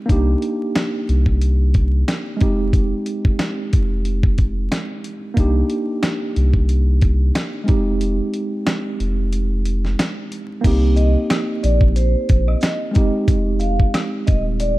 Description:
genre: hip hop, boom-bap hip-hop.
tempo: 91 BPM.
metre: 4/4.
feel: swing 56% on 16ths.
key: C minor.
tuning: A4 = 440 Hz.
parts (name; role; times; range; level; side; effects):
tine electric piano; accompaniment; 0.0-14.8 s; Ab3 to G4; -23 LUFS; right 2 dB; medium stereo tremolo, cassette tape, high-pass filter, low-pass filter.
saturated sub bass; bass; 0.1-14.8 s; Eb1 to C2; -18 LUFS; equal; none.
dusty soul sampler-style drum kit; drums; 0.1-14.8 s; crash cymbal, hi-hat, kick drum, snare drum; -18 LUFS; equal; none.
maracas and woodblock; percussion; 10.6-14.8 s; none; -36 LUFS; left 1 dB; none.
vibraphone with soft mallets; melody; 11.0-14.8 s; C5 to F5; -25 LUFS; right 2 dB; high-pass filter, low-pass filter.
room: little or no reverb.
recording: dark, warm production, vinyl crackle.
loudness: -16 LUFS.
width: side -18 dB against mid.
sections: 0.0-10.6 A section; 10.6-14.8 B section.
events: break 8.0-10.6.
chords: 0.1 Cm7; 2.4 Fm7; 5.4 Cm7; 7.7 Fm7; 10.6 Cm7; 13.0 Fm7.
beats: | 0.10 0.76 1.41 2.07 | 2.73 3.39 4.05 4.71 | 5.37 6.03 6.69 7.35 | 8.01 8.67 9.33 9.99 | 10.64 11.30 11.96 12.62 | 13.28 13.94 14.60.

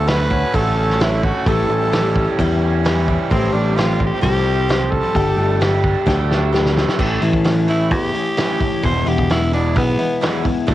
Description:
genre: folk rock and heartland rock.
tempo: 130 BPM.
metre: 4/4.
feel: straight.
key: A mixolydian.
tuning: A4 = 439 Hz.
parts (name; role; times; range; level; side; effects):
growling tenor saxophone; melody; 0.0-10.2 s; B3 to C5; -22 LUFS; equal; cassette tape, analog delay.
picked twelve-string acoustic guitar; accompaniment; 0.0-10.7 s; E2 to G4; -22 LUFS; left 6 dB; cassette tape.
raw garage guitar; riff; 0.0-10.7 s; E2 to G4; -24 LUFS; right 8 dB; overdrive, cassette tape.
picked electric bass; bass; 0.0-10.7 s; E1 to E2; -19 LUFS; equal; none.
loose indie drum kit; drums; 0.1-10.7 s; crash cymbal, hi-hat, kick drum, snare drum; -22 LUFS; equal; cassette tape.
room: light reverb.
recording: home recording on cassette.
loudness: -15 LUFS.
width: side -14 dB against mid.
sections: 0.0-7.0 A section; 7.0-10.7 B section.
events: drum fill 6.1-7.0; tenor saxophone solo 7.0-10.7.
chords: 0.0 Dmaj7; 1.5 A7; 3.3 Fadd9/A; 5.1 Gsus2; 7.0 A; 8.8 E.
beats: 0.07 0.54 1.00 | 1.46 1.92 2.38 2.84 | 3.30 3.76 4.22 4.68 | 5.14 5.60 6.07 6.53 | 6.99 7.45 7.91 8.37 | 8.83 9.30 9.76 10.22 | 10.68.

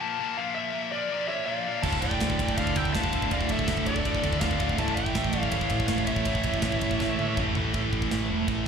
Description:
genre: heavy metal.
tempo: 163 BPM.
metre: 4/4.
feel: straight.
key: D harmonic minor.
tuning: A4 = 440 Hz.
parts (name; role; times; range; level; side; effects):
high-gain lead guitar; melody; 0.0-7.4 s; D5 to A5; -32 LUFS; left 1 dB; distortion, slapback echo, tape echo.
heavy high-gain guitar; riff; 0.0-8.7 s; D2 to Bb3; -32 LUFS; left 13 dB; distortion, slapback echo.
high-gain lead guitar; second line; 1.3-7.4 s; A4 to F5; -36 LUFS; right 4 dB; distortion, slapback echo, tape echo.
distorted electric guitar; riff; 1.8-8.7 s; D2 to A3; -32 LUFS; right 1 dB; distortion, slapback echo.
high-gain distorted guitar; riff; 1.8-8.7 s; D2 to A3; -31 LUFS; right 14 dB; distortion.
growling picked electric bass; bass; 1.8-8.6 s; D1 to A2; -32 LUFS; equal; overdrive.
tight metal drum kit; drums; 1.8-8.6 s; china cymbal, crash cymbal, kick drum, ride cymbal, snare drum, toms; -30 LUFS; equal; none.
room: light reverb.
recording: live gig heard through the venue's PA, club reverb.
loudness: -24 LUFS.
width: side -6 dB against mid.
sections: 0.0-7.7 A section.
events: drum fill 7.0-7.7.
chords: 0.0 Bb; 1.8 Dm; 4.8 A; 7.7 A5.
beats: 0.00 | 0.36 0.73 1.10 1.47 | 1.84 2.21 2.58 2.94 | 3.31 3.68 4.05 4.42 | 4.79 5.16 5.53 5.90 | 6.26 6.63 7.00 7.37 | 7.74 8.11 8.48.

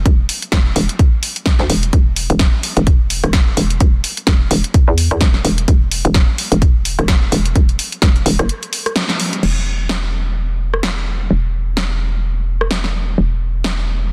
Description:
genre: bass house.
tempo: 128 BPM.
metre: 4/4.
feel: swing 57% on 16ths.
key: unclear.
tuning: A4 = 440 Hz.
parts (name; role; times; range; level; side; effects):
hollow knocking FM bass; bass; 0.0-14.1 s; E1 to E2; -20 LUFS; equal; tube saturation, sidechain pumping.
electronic kick drum; drums; 0.1-8.1 s; none; -14 LUFS; equal; none.
house drum kit; drums; 0.1-13.8 s; crash cymbal, hi-hat, rim click, snare drum; -22 LUFS; equal; none.
room: light reverb.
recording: dense, heavily limited modern master.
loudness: -16 LUFS.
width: mono.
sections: 0.0-9.4 A section; 9.4-14.1 B section.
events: break 8.5-9.4; band accent 9.0.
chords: none.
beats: | 0.06 0.52 0.99 1.46 | 1.93 2.40 2.87 3.34 | 3.81 4.27 4.74 5.21 | 5.68 6.15 6.62 7.09 | 7.56 8.02 8.49 8.96 | 9.43 9.90 10.37 10.84 | 11.31 11.77 12.24 12.71 | 13.18 13.65 14.12.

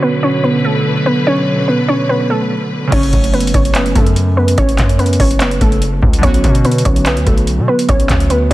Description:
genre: hip hop, trap.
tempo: 145 BPM.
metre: 4/4.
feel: half-time.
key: F# minor.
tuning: A4 = 439 Hz.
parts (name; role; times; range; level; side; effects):
warbly dusty pluck; melody; 0.0-8.5 s; A3 to C#5; -16 LUFS; right 1 dB; chorus, low-pass filter, tape echo.
glassy digital keys; accompaniment; 0.0-8.5 s; C#3 to F#4; -20 LUFS; right 1 dB; chorus, low-pass filter.
rich symphonic string section; sustained chords; 0.0-2.9 s; B2 to B4; -20 LUFS; left 1 dB; low-pass filter.
distorted 808-style bass; bass; 2.9-8.5 s; F#1 to B2; -16 LUFS; equal; distortion.
booming analog drum machine; drums; 2.9-8.5 s; crash cymbal, handclaps, hi-hat, kick drum; -14 LUFS; equal; none.
room: little or no reverb.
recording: dense, heavily limited modern master, vinyl crackle.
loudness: -11 LUFS.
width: side -16 dB against mid.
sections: 0.0-2.9 A section; 2.9-8.5 B section.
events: none.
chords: 0.0 Bm; 2.9 F#m; 6.2 Bm.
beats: 0.03 0.44 0.85 | 1.27 1.68 2.09 2.51 | 2.92 3.33 3.75 4.16 | 4.58 4.99 5.40 5.82 | 6.23 6.64 7.06 7.47 | 7.89 8.30.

